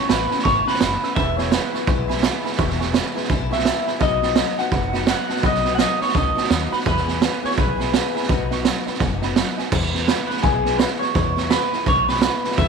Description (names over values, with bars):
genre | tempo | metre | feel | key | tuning
rockabilly | 168 BPM | 4/4 | swing 61% on 8ths | E major | A4 = 441 Hz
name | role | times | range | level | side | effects
electric guitar through a small old amp | melody | 0.0-12.7 s | G#4 to F#5 | -22 LUFS | equal | phaser, tape echo
honky-tonk upright piano | accompaniment | 0.0-9.7 s | D#5 to E6 | -32 LUFS | right 9 dB | none
picked steel-string acoustic guitar | accompaniment | 0.0-12.7 s | E2 to G#4 | -29 LUFS | left 15 dB | none
upright bass | bass | 0.1-12.7 s | E1 to E2 | -26 LUFS | left 3 dB | none
raw garage drum kit | drums | 0.1-12.7 s | crash cymbal, hi-hat, kick drum, snare drum | -20 LUFS | right 5 dB | none
room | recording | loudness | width
light reverb, small room ambience | 1960s-style stereo with parts hard left and right | -18 LUFS | side -5 dB against mid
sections
0.0-9.7 A section; 9.7-12.7 A section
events
none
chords
0.0 A; 1.2 E; 4.0 B; 6.9 E; 8.3 B; 9.7 E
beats
0.09 0.45 0.80 | 1.16 1.51 1.87 2.22 | 2.58 2.94 3.29 3.65 | 4.00 4.36 4.72 5.08 | 5.43 5.79 6.15 6.50 | 6.86 7.22 7.58 7.93 | 8.29 8.65 9.01 9.36 | 9.72 10.08 10.43 10.79 | 11.15 11.51 11.86 12.22 | 12.58